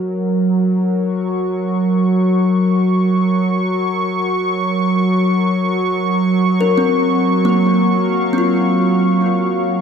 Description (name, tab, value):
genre	ambient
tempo	free time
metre	none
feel	none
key	Gb lydian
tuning	A4 = 440 Hz
part	warm analog pad	sustained chords	0.0-9.8 s	Gb3 to Db6	-14 LUFS	right 1 dB	chorus
part	kalimba	arpeggios	0.0-1.2, 6.6-9.8 s	Bb3 to Bb4	-17 LUFS	left 2 dB	tape echo
room	wet plate reverb, RT60 3.4 s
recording	echo-heavy mix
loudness	-14 LUFS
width	side -7 dB against mid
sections	0.0-9.8 A section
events	none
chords	0.0 Gb; 4.8 Gbmaj7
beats	free time